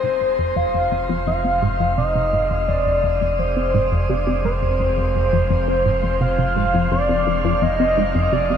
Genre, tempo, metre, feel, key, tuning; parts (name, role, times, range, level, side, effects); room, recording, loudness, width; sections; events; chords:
ambient, sequencer-driven space music; 85 BPM; 4/4; straight; F dorian; A4 = 440 Hz
pulse-width lead; melody; 0.0-8.6 s; C5 to F5; -20 LUFS; equal; chorus, analog delay
evolving wavetable pad; sustained chords; 0.0-8.6 s; F3 to C5; -29 LUFS; left 1 dB; chorus, built-in reverb
tight sequenced synth; riff; 0.0-8.6 s; F2 to C4; -22 LUFS; left 1 dB; chorus, analog delay
round analog bass; bass; 0.0-8.6 s; F1; -25 LUFS; equal
wind-like tuned noise texture; texture; 2.2-8.6 s; F5; -38 LUFS; equal; built-in reverb
wet shimmer reverb, RT60 7.6 s; cassette tape; -17 LUFS; side -8 dB against mid
0.0-8.6 A section
fade-in on ambient pad 0.0-8.6; fade-in on synth texture 0.0-8.6; filter sweep on synth arpeggio sound 0.0-8.6
0.0 Fm